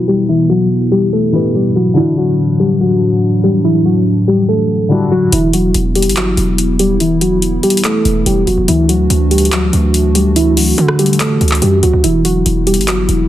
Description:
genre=hip hop, trap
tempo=143 BPM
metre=4/4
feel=half-time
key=E minor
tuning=A4 = 437 Hz
part: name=muted felt-like synth keys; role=melody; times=0.0-13.3 s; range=E3 to A4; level=-13 LUFS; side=left 1 dB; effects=chorus, low-pass filter
part: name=felt-muted upright piano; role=accompaniment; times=0.0-5.3 s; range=D3 to B4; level=-19 LUFS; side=left 2 dB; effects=none
part: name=dark analog pad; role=sustained chords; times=0.0-13.3 s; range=A2 to F#4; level=-17 LUFS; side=equal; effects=chorus
part: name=hard-hitting 808-style bass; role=bass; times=5.3-13.3 s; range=E1 to D3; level=-15 LUFS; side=equal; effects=none
part: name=trap drum kit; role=drums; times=5.3-13.2 s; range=handclaps, hi-hat, rim click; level=-18 LUFS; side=left 2 dB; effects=none
room=light reverb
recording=dense, heavily limited modern master, low-pass filter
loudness=-10 LUFS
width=side -12 dB against mid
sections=0.0-5.3 A section; 5.3-13.3 B section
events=filter sweep 0.0-5.3; filter sweep on synth keys 5.3-12.0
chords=0.0 Em; 2.0 Dadd9; 5.3 Em; 8.7 Dadd9; 12.0 Em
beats=| 0.29 0.71 1.13 1.55 | 1.97 2.39 2.81 3.23 | 3.65 4.07 4.49 4.91 | 5.33 5.74 6.16 6.58 | 7.00 7.42 7.84 8.26 | 8.68 9.10 9.52 9.94 | 10.36 10.78 11.20 11.62 | 12.04 12.46 12.88

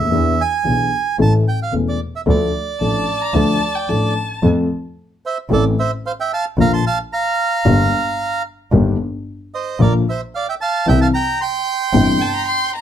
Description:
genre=tango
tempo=112 BPM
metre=4/4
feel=rubato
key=D minor, F major from 4.4 s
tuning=A4 = 437 Hz
part: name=bandoneon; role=melody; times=0.0-12.7 s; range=A4 to C6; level=-20 LUFS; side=right 4 dB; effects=none
part: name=dark concert grand piano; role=accompaniment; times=0.0-12.2 s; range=E1 to A4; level=-17 LUFS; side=left 4 dB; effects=none
part: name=warm double bass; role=bass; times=0.0-12.2 s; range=E1 to F2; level=-19 LUFS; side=right 2 dB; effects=none
part: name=warm violin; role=second line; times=2.8-4.4, 11.9-12.8 s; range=G5 to C6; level=-23 LUFS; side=left 4 dB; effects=none
room=light reverb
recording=close, detailed microphones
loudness=-15 LUFS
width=side -10 dB against mid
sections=0.0-4.4 A section; 4.4-12.8 B section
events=none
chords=0.1 E7; 1.2 A; 2.3 Dm; 4.4 F; 5.5 Am; 6.6 Bb; 7.7 Gm; 8.7 Eb/G; 9.8 Bb; 10.9 C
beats=| 0.12 0.65 1.19 1.73 | 2.27 2.81 3.35 3.89 | 4.43 4.97 5.51 6.05 | 6.58 7.12 7.65 8.19 | 8.72 9.26 9.79 10.33 | 10.87 11.40 11.94 12.48

